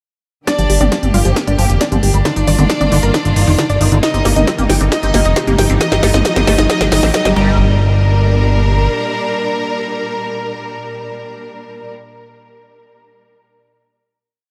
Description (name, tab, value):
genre	uplifting trance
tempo	135 BPM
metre	4/4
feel	straight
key	G minor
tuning	A4 = 442 Hz
part	unison pluck	melody	0.5-12.3 s	Bb3 to Bb5	-23 LUFS	equal	cassette tape, sidechain pumping, digital delay
part	plucky unison lead	second line	0.5-11.9 s	Eb4 to Bb5	-30 LUFS	equal	none
part	rich studio violin section	second line	0.5-11.9 s	D4 to Eb5	-24 LUFS	equal	digital delay
part	clear studio string section	sustained chords	0.5-11.9 s	Bb2 to G4	-26 LUFS	equal	sidechain pumping
part	liquid acid bass	arpeggios	0.5-7.8 s	D3 to C4	-24 LUFS	equal	ensemble chorus, sidechain pumping, digital delay
part	electronic kick drum	drums	0.5-7.5 s	none	-24 LUFS	equal	high-pass filter on kick, high-pass filter on room
part	techno drum kit	drums	0.5-7.3 s	hi-hat, snare drum, toms	-21 LUFS	equal	none
part	riser	sound effects	3.7-7.6 s	none	-28 LUFS	equal	none
part	fat analog bass	bass	0.6-8.9 s	F1 to A1	-16 LUFS	equal	sidechain pumping
room	light reverb, digital ambience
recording	none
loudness	-14 LUFS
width	mono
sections	0.5-7.6 build; 7.6-11.1 final hit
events	build-up 0.5-7.6; drum fill 0.5-7.6; filter sweep on synth pluck 0.5-7.6; filter sweep on acid bass 0.5-7.6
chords	0.5 Gmadd9; 2.3 Ebadd9/G; 4.0 Cm7/G; 5.8 Adim/G; 7.4 Gm